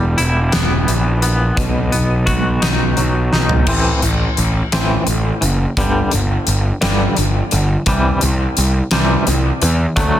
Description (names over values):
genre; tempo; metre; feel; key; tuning
quiet-loud alternative rock; 57 BPM (dotted quarters); 6/8; straight; unclear; A4 = 440 Hz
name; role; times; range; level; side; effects
twangy electric guitar; arpeggios; 0.0-10.2 s; E2 to F#4; -20 LUFS; left 1 dB; tremolo, analog delay
fuzz picked electric bass; bass; 0.0-10.2 s; E1 to E2; -16 LUFS; equal; overdrive
huge arena drum kit; drums; 0.2-10.1 s; crash cymbal, hi-hat, kick drum, snare drum, toms; -19 LUFS; equal; none
room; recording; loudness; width
little or no reverb; dense, heavily limited modern master; -13 LUFS; side -11 dB against mid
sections
0.0-3.7 A section; 3.7-10.2 B section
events
drum fill 3.3-3.7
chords
0.0 Em; 1.6 B; 3.7 Am; 5.8 G5; 7.9 C